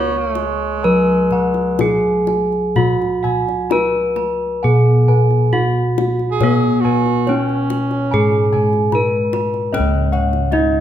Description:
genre	Javanese gamelan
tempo	62-76 BPM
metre	4/4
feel	straight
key	Db slendro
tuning	A4 = 440 Hz
part	gamelan-type bronze metallophone	melody	0.0-10.8 s	Cb4-45c to Db5	-18 LUFS	left 1 dB	none
part	breathy alto saxophone	second line	0.0-9.0 s	Ab3+24c to Ab4+24c	-24 LUFS	right 6 dB	none
part	gamelan-type bossed gongs	arpeggios	0.0-10.8 s	Cb5-45c to Db6	-26 LUFS	left 2 dB	none
part	gamelan-type bronze metallophone	arpeggios	0.0-10.8 s	Cb5-45c to Db6	-26 LUFS	right 9 dB	none
part	gamelan-type bossed gongs	bass	0.0-10.8 s	Db2 to Cb5-45c	-18 LUFS	equal	none
part	kendang	percussion	0.4-10.7 s	none	-24 LUFS	left 5 dB	none
room	moderate recital hall reverb, RT60 1.5 s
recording	none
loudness	-14 LUFS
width	side -10 dB against mid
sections	0.0-9.7 A section; 9.7-10.8 B section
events	none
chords	none

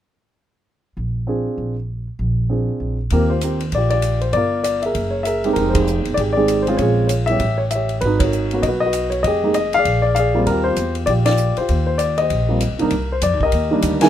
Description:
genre	jazz piano trio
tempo	196 BPM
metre	4/4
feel	swing 60% on 8ths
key	Eb major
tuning	A4 = 439 Hz
part	upright bass	bass	1.0-14.1 s	Fb1 to F2	-21 LUFS	equal	none
part	warm grand piano	melody	1.3-14.1 s	C3 to Ab5	-18 LUFS	left 1 dB	none
part	compact cocktail drum kit	drums	3.1-14.1 s	hi-hat, kick drum, ride cymbal, snare drum	-27 LUFS	right 1 dB	none
room	light reverb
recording	minimal, uncompressed stereo recording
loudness	-16 LUFS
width	side -11 dB against mid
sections	0.7-3.1 A section; 3.1-12.9 B section; 12.9-14.1 C section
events	band accent 5.7, 8.2, 11.2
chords	0.7 N.C.; 1.3 Bb9; 1.9 N.C.; 2.5 Bb9; 3.1 Eb69; 4.3 Gm7; 5.0 Gbadd9; 5.6 Fm9; 6.8 Bbm9; 7.4 A7; 8.0 Abm11; 9.2 Fm9; 9.9 Bb7; 10.5 Eb69; 12.9 Cm9

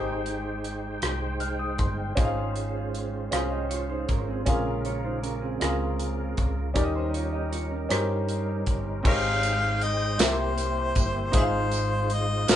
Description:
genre	slow gospel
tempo	52 BPM (dotted quarters)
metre	6/8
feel	straight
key	Ab major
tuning	A4 = 439 Hz
part	clear concert grand piano	accompaniment	0.0-12.6 s	Ab2 to F6	-31 LUFS	left 1 dB	none
part	tonewheel organ	sustained chords	0.0-12.6 s	Db3 to G5	-34 LUFS	right 2 dB	slow rotary speaker, chorus vibrato
part	hollow-body short-scale fingered electric bass	bass	0.0-12.6 s	G1 to G2	-31 LUFS	equal	none
part	modern studio drum kit	drums	0.3-12.6 s	crash cymbal, hi-hat, kick drum, rim click, snare drum	-27 LUFS	equal	none
part	mellow electric guitar	second line	3.3-8.8 s	C4 to F5	-35 LUFS	right 4 dB	spring reverb
part	mellow harmonica	melody	9.1-12.6 s	Fb4 to F5	-27 LUFS	left 2 dB	none
part	tambourine	percussion	9.4-12.6 s	none	-34 LUFS	right 6 dB	none
room	moderate studio ambience, RT60 0.5 s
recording	band playing live in one room, nothing above 10.4 kHz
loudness	-24 LUFS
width	side -11 dB against mid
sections	0.0-9.1 A section; 9.1-12.6 B section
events	none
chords	0.0 Abmaj7; 2.2 Dbmaj7/Ab; 4.5 Bbm7; 6.8 Eb7; 9.1 Abmaj7; 10.2 C7; 11.3 Fm7/Ab

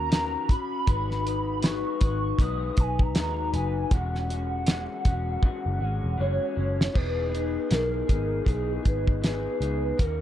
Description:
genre	indie pop, bedroom pop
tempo	79 BPM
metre	4/4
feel	swing 60% on 16ths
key	E lydian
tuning	A4 = 439 Hz
part	hollow clarinet-like synth lead	melody	0.0-10.2 s	G#4 to D#6	-31 LUFS	right 2 dB	ensemble chorus
part	electric guitar through a small old amp	accompaniment	0.0-10.2 s	D#3 to B4	-31 LUFS	left 6 dB	lush chorus, warbly pitch drift
part	vintage muted picked electric bass	bass	0.0-10.2 s	E1 to D#2	-29 LUFS	equal	none
part	cloth-damped thuddy drum kit	drums	0.1-10.2 s	crash cymbal, hi-hat, kick drum, snare drum	-24 LUFS	equal	none
room	studio ambience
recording	dark, warm production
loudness	-24 LUFS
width	side -11 dB against mid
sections	0.0-7.0 A section; 7.0-10.2 B section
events	drum fill 5.4-7.0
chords	0.0 D#m7; 0.9 G#m7; 3.9 E69; 7.0 Emaj7

